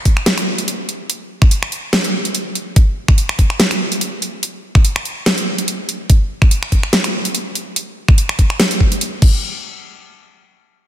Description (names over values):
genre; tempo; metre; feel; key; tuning
heavy wobble dubstep; 144 BPM; 4/4; swing 55% on 16ths, half-time; none; none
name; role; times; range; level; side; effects
dubstep drum kit; drums; 0.1-9.3 s; crash cymbal, finger snaps, hi-hat, snare drum; -17 LUFS; equal; studio reverb
electronic kick drum; drums; 0.1-9.3 s; none; -11 LUFS; equal; studio reverb
room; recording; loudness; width
light reverb, digital ambience; dense, heavily limited modern master; -14 LUFS; side -12 dB against mid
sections
0.0-9.4 A section; 9.4-10.9 B section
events
none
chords
none